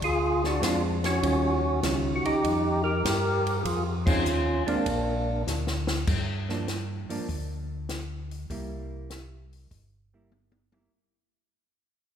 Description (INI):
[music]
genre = soul jazz organ trio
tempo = 99 BPM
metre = 4/4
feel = swing 69% on 8ths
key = unclear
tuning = A4 = 440 Hz
[part]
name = percussive tonewheel organ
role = melody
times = 0.0-5.4 s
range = Bb3 to Bb4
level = -26 LUFS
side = equal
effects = slow rotary speaker, overdrive
[part]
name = mellow tonewheel organ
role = bass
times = 0.0-10.9 s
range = G1 to G2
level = -31 LUFS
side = left 1 dB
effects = slow rotary speaker
[part]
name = compact cocktail drum kit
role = drums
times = 0.0-10.9 s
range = crash cymbal, hi-hat, kick drum, ride cymbal, snare drum, toms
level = -31 LUFS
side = equal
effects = none
[part]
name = hollow-body jazz guitar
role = accompaniment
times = 0.6-10.9 s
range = Eb3 to Ab4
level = -32 LUFS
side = right 3 dB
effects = none
[sound]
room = wet scoring stage reverb, RT60 2.1 s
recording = recorded in a church or concert hall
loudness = -25 LUFS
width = side -8 dB against mid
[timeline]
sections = 0.0-6.1 A section; 6.1-10.9 B section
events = band accent 4.0-4.3; drum fill 5.5-6.1, 10.3-10.9; fade-out 6.1-10.9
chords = 0.0 Bb9 (rootless); 1.2 Eb9; 3.7 Fm7; 4.9 Bb; 6.1 Gm7; 8.5 C7